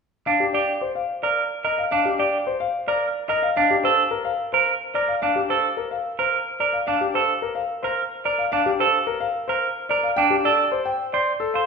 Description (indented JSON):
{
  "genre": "classical, minimalist pattern music",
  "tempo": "109 BPM",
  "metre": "3/4",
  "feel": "straight",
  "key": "C dorian",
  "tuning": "A4 = 439 Hz",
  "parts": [
    { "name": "clear concert grand piano", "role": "melody", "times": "0.3-11.7 s", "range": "G4 to G5", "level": "-23 LUFS", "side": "left 4 dB", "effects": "none" },
    { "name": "clean electric guitar", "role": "arpeggios", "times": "0.3-11.7 s", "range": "D4 to C5", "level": "-22 LUFS", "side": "right 6 dB", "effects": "none" }
  ],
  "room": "wet recital hall reverb, RT60 1.5 s",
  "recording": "recorded in a church or concert hall",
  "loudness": "-20 LUFS",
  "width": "side -5 dB against mid",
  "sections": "0.3-11.7 A section",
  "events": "none",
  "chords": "0.3 C7sus2 (rootless); 3.6 Bbmaj9; 10.2 D7(no3)"
}